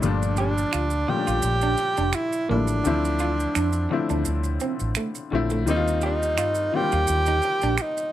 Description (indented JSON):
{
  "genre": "R&B, neo-soul",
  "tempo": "85 BPM",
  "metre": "4/4",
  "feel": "swing 53% on 16ths",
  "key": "unclear",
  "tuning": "A4 = 440 Hz",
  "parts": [
    { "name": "breathy tenor saxophone", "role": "melody", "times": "0.0-8.1 s", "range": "D4 to G4", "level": "-25 LUFS", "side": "right 1 dB", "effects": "plate reverb" },
    { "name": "warm upright piano", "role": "accompaniment", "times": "0.0-8.1 s", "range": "Bb2 to F4", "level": "-27 LUFS", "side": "left 5 dB", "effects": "plate reverb" },
    { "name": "vintage muted fingered electric bass", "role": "bass", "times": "0.0-7.8 s", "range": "F1 to G2", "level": "-26 LUFS", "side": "right 1 dB", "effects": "none" },
    { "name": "maracas and finger snaps", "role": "percussion", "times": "0.0-8.1 s", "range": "none", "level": "-32 LUFS", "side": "right 8 dB", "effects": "none" },
    { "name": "electric guitar through a small old amp", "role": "second line", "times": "0.4-7.7 s", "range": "A3 to G4", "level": "-31 LUFS", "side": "right 4 dB", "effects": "plate reverb" }
  ],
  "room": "moderate studio ambience, RT60 0.5 s",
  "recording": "none",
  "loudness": "-21 LUFS",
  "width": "side -12 dB against mid",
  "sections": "0.0-8.1 A section",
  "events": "none",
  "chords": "0.0 Gm9; 2.8 Dm9; 5.7 Eb69"
}